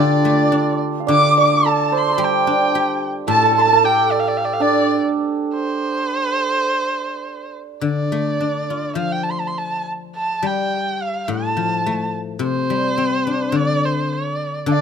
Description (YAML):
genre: chinese traditional, Chinese chamber ensemble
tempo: 100-112 BPM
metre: 2/4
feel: rubato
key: D yu mode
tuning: A4 = 440 Hz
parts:
  - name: dark erhu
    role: melody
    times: 0.0-14.8 s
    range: C5 to D6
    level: -21 LUFS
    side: right 2 dB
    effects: none
  - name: hammered dulcimer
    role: second line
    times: 0.0-8.3, 14.7-14.8 s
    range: D4 to F5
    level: -19 LUFS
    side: right 7 dB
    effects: none
  - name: large dizi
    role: second line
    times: 0.0-4.9, 14.7-14.8 s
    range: D5 to D6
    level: -22 LUFS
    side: left 9 dB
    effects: none
  - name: guzheng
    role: accompaniment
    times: 0.0-5.0, 7.8-14.8 s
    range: A2 to G4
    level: -21 LUFS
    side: left 5 dB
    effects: none
room: light reverb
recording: close, detailed microphones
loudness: -16 LUFS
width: side -7 dB against mid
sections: 0.0-5.6 A section; 5.6-14.7 B section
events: none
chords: none